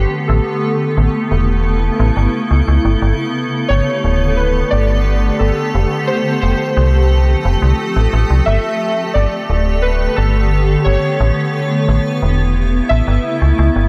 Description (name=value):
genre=IDM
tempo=88 BPM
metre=4/4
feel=straight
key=G lydian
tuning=A4 = 440 Hz
part: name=warbly lo-fi synth keys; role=melody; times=0.0-13.9 s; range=G4 to E5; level=-23 LUFS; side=equal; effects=chorus, analog delay
part: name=granular cloud pad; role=sustained chords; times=0.0-13.9 s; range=C#3 to A4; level=-20 LUFS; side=equal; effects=built-in reverb, subtle chorus
part: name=metallic FM bass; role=bass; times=0.0-13.9 s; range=D1 to C#2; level=-16 LUFS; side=equal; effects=tube saturation
room=moderate huge ambient reverb, RT60 4.6 s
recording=dreamy mix soaked in reverb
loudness=-15 LUFS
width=mono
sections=0.0-13.9 A section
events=none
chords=0.3 Aadd9; 3.0 Gadd9; 5.7 Fadd9; 8.5 Gadd9; 11.2 Aadd9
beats=| 0.29 0.97 1.65 2.34 | 3.02 3.70 4.38 5.06 | 5.75 6.43 7.11 7.79 | 8.47 9.15 9.84 10.52 | 11.20 11.88 12.56 13.24